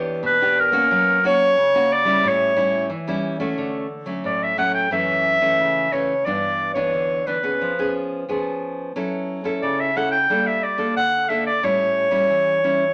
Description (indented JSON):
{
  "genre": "samba",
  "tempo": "90 BPM",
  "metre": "4/4",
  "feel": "straight",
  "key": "D major from 3.6 s",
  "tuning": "A4 = 440 Hz",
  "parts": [
    { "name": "nylon-string guitar", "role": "accompaniment", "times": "0.0-12.9 s", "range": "F#2 to A4", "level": "-27 LUFS", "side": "equal", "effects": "none" },
    { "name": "bright clarinet", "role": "melody", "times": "0.3-12.9 s", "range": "A#4 to G5", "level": "-20 LUFS", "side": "equal", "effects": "none" }
  ],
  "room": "moderate studio reverb, RT60 0.7 s",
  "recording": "none",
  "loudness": "-20 LUFS",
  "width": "mono",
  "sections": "0.0-3.6 A section; 3.6-12.9 B section",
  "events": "none",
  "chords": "0.0 Em7; 0.9 F#; 2.2 A7; 3.6 Dmaj7; 4.9 F#m7; 6.3 G6; 7.6 C#7/E#; 8.9 F#m7; 10.3 Gmadd9; 11.6 A7"
}